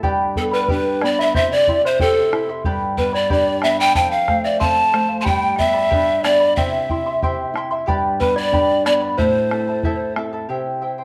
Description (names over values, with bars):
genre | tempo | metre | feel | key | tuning
andean folk, Andean ensemble | 92 BPM | 2/4 | straight | unclear | A4 = 439 Hz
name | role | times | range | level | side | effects
charango | accompaniment | 0.0-11.0 s | E4 to C6 | -26 LUFS | equal | none
nylon-string guitar | accompaniment | 0.0-11.0 s | F2 to G4 | -29 LUFS | equal | none
bombo | percussion | 0.0-10.3 s | none | -27 LUFS | equal | none
breathy polished pan flute | melody | 0.4-10.1 s | A4 to A5 | -20 LUFS | equal | slapback echo
worn celesta | second line | 0.4-10.1 s | A4 to C6 | -27 LUFS | equal | none
room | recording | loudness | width
wet echo chamber reverb, RT60 1.6 s, studio reverb | none | -18 LUFS | mono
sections
0.0-10.5 A section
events
none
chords
0.0 G; 1.3 C; 2.7 G; 4.0 F; 5.3 G; 6.6 C; 7.9 G; 9.2 Am; 10.5 C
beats
| 0.04 0.69 | 1.35 2.00 | 2.66 3.31 | 3.96 4.62 | 5.27 5.92 | 6.57 7.23 | 7.88 8.53 | 9.18 9.84 | 10.49